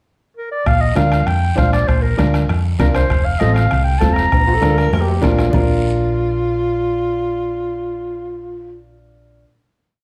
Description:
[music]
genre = latin, cumbia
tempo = 197 BPM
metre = 4/4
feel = straight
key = Bb major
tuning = A4 = 440 Hz
[part]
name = breathy clarinet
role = melody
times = 0.4-5.2 s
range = Bb4 to Bb5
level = -22 LUFS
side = equal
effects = none
[part]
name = hollow-body short-scale fingered electric bass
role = bass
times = 0.7-9.4 s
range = F1 to F2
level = -20 LUFS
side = equal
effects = none
[part]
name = bombo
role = percussion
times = 0.7-5.6 s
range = none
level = -23 LUFS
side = equal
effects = none
[part]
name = congas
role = percussion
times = 0.7-5.6 s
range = none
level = -27 LUFS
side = equal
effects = none
[part]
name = guiro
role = percussion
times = 0.7-5.6 s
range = none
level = -40 LUFS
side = equal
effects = none
[part]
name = timbales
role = percussion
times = 0.7-5.6 s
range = none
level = -32 LUFS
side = equal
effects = none
[part]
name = bright upright piano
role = accompaniment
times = 1.0-9.4 s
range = C4 to C5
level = -26 LUFS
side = equal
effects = none
[part]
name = breathy tenor saxophone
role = second line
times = 4.5-8.7 s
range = F4 to Bb4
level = -23 LUFS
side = equal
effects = none
[sound]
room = wet large studio reverb, RT60 0.9 s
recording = heard from further back in the room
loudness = -16 LUFS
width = mono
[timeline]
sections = 0.0-0.7 pickup bar; 0.7-5.5 A section; 5.5-8.0 final chord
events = drum fill 4.3-5.5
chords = 0.0 N.C.; 0.7 Bb; 3.1 F; 4.3 Bb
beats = 0.05 0.35 | 0.66 0.97 1.27 1.58 | 1.88 2.19 2.49 2.79 | 3.10 3.40 3.71 4.01 | 4.32 4.62 4.93 5.23 | 5.54 5.84 6.15 6.45 | 6.76 7.06 7.37 7.67

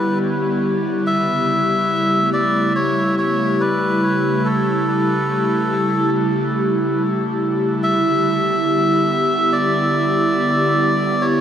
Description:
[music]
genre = ambient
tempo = 71 BPM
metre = 4/4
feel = swing 56% on 16ths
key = E dorian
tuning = A4 = 440 Hz
[part]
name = melodica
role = melody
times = 0.0-11.4 s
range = A4 to E5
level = -19 LUFS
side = equal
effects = dub echo
[part]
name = airy breathy pad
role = sustained chords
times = 0.0-11.4 s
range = C#3 to G4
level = -18 LUFS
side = equal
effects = chorus
[sound]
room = wet plate reverb, RT60 2.7 s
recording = dreamy mix soaked in reverb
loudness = -16 LUFS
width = side -9 dB against mid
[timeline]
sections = 0.0-7.8 A section; 7.8-11.4 B section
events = none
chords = 0.0 Em7; 1.1 A7; 7.8 Em7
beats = 0.23 | 1.07 1.92 2.76 3.61 | 4.45 5.30 6.14 6.99 | 7.83 8.68 9.52 10.37 | 11.21

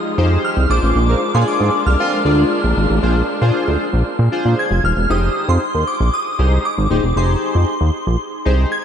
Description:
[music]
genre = funk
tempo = 116 BPM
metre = 4/4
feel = straight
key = F dorian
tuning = A4 = 440 Hz
[part]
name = warm studio string section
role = sustained chords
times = 0.0-5.1 s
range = F3 to F4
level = -25 LUFS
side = left 1 dB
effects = none
[part]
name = chorused polysynth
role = accompaniment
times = 0.2-8.7 s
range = D4 to D5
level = -21 LUFS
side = left 2 dB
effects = none
[part]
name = chorused synth bass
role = bass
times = 0.2-8.7 s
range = Eb1 to Bb2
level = -15 LUFS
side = equal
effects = none
[part]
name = shimmering bell with halo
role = melody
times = 0.4-8.8 s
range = C6 to Ab6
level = -22 LUFS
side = equal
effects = ensemble chorus, ping-pong delay
[part]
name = mellow horn section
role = second line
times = 1.1-2.2 s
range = D3 to Bb4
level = -28 LUFS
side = right 2 dB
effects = none
[sound]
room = moderate cathedral reverb, RT60 6.6 s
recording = dreamy mix soaked in reverb, nothing above 10.7 kHz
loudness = -14 LUFS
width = side -8 dB against mid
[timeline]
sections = 0.0-5.1 A section; 5.1-8.8 B section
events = none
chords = 0.0 Fm9; 0.7 Bb9; 5.1 Fm9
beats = 0.44 | 0.96 1.47 1.99 2.51 | 3.03 3.54 4.06 4.58 | 5.09 5.61 6.13 6.65 | 7.16 7.68 8.20 8.71

